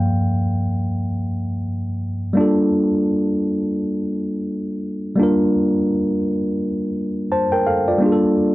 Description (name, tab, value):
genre	R&B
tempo	free time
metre	none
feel	none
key	G minor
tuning	A4 = 440 Hz
part	tine electric piano	solo	0.0-8.5 s	G2 to A5	-17 LUFS	equal	none
room	little or no reverb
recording	dry, close 1970s-style studio recording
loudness	-18 LUFS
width	side -18 dB against mid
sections	0.0-2.4 A section; 2.4-8.0 B section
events	tine electric piano solo 0.0-2.4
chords	0.0 Gm7; 2.4 Gm9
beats	free time